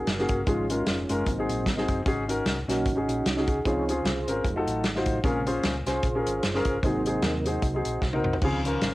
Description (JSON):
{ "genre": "uptempo gospel", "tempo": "151 BPM", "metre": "4/4", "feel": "swing 57% on 8ths", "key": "unclear", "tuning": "A4 = 443 Hz", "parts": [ { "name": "warm grand piano", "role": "accompaniment", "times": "0.0-8.9 s", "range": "Ab2 to C5", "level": "-28 LUFS", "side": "left 2 dB", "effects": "none" }, { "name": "percussive tonewheel organ", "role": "sustained chords", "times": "0.0-8.9 s", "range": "C3 to Db5", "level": "-30 LUFS", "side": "right 2 dB", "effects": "slow rotary speaker, chorus vibrato" }, { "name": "hollow-body short-scale fingered electric bass", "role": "bass", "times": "0.1-8.9 s", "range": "F1 to Eb2", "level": "-33 LUFS", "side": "equal", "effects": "none" }, { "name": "warm soul drum kit", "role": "drums", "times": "0.1-8.9 s", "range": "crash cymbal, hi-hat, kick drum, snare drum, toms", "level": "-29 LUFS", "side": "equal", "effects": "cassette tape" } ], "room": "light reverb, small room ambience", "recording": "home recording on cassette", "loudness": "-24 LUFS", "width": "side -18 dB against mid", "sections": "0.0-8.9 A section", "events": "tonewheel organ solo 0.0-8.9; drum fill 8.0-8.4", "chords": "0.5 Db/Ab; 1.3 Ab7; 2.1 Ab7sus4; 3.6 Dbmaj7; 4.4 F7b9; 5.2 Bbm7; 6.8 Ab7; 8.4 Dbmaj7", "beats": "0.07 | 0.47 0.87 1.27 1.66 | 2.06 2.46 2.85 3.25 | 3.65 4.05 4.44 4.84 | 5.24 5.64 6.03 6.43 | 6.83 7.23 7.62 8.02 | 8.42 8.82" }